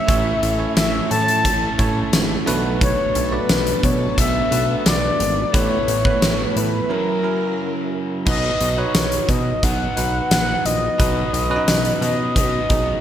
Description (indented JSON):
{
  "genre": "1980s-style pop",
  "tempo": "88 BPM",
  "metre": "4/4",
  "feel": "straight",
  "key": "A major, B major from 8.3 s",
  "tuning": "A4 = 440 Hz",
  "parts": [
    { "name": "mellow horn-like synth lead", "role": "melody", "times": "0.0-13.0 s", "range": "A#4 to A5", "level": "-22 LUFS", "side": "left 2 dB", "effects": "chorus" },
    { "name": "bell-like tine electric piano", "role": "accompaniment", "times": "0.0-13.0 s", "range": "F#3 to D5", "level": "-25 LUFS", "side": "right 5 dB", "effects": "none" },
    { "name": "crunchy overdriven guitar", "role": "accompaniment", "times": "0.0-13.0 s", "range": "F#2 to B3", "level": "-30 LUFS", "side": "equal", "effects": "wide subtle chorus" },
    { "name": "ensemble organ-string", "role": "sustained chords", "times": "0.0-8.3 s", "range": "F#3 to C#5", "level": "-29 LUFS", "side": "equal", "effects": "ensemble chorus" },
    { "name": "fat analog bass", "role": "bass", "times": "0.1-12.9 s", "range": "G#1 to B2", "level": "-24 LUFS", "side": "equal", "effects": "none" },
    { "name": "huge arena drum kit", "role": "drums", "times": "0.1-12.9 s", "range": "crash cymbal, hi-hat, kick drum, snare drum, tambourine", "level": "-21 LUFS", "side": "equal", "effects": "gated reverb" }
  ],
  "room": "moderate lush hall reverb, RT60 2.1 s",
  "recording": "bright 1980s-style digital production",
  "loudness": "-16 LUFS",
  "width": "side -10 dB against mid",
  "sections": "0.0-8.3 A section; 8.3-13.0 A section",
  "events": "break 6.9-8.3",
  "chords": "0.0 A; 2.5 Bm7; 5.5 Asus2; 6.9 F#7; 8.3 B"
}